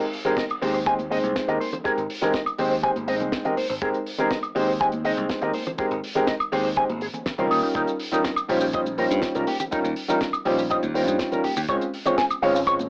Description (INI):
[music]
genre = nu-disco, nu disco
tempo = 122 BPM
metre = 4/4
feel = straight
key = Ab major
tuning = A4 = 440 Hz
[part]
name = damped 70s drum kit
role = drums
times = 0.0-12.9 s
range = hi-hat, shaker, snare drum, woodblock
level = -33 LUFS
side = equal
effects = studio ambience, cassette tape
[part]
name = warm grand piano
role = accompaniment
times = 0.2-12.8 s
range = G3 to Db5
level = -26 LUFS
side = equal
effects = cassette tape, analog delay
[part]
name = congas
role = percussion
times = 0.2-12.9 s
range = none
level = -39 LUFS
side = equal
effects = none
[part]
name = electric guitar with an envelope filter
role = riff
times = 0.3-12.7 s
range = Eb4 to Db6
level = -29 LUFS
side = equal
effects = subtle chorus, cassette tape
[part]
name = kick drum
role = drums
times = 0.4-12.8 s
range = none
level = -38 LUFS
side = equal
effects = studio ambience, cassette tape
[part]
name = modern bright picked electric bass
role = bass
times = 0.6-12.9 s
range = Ab1 to G2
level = -34 LUFS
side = equal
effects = sidechain pumping
[sound]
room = light reverb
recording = home recording on cassette, AM radio sound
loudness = -24 LUFS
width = mono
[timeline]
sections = 0.0-12.9 A section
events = none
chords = 0.0 Abmaj9; 7.5 Eb9; 11.7 Dbmaj7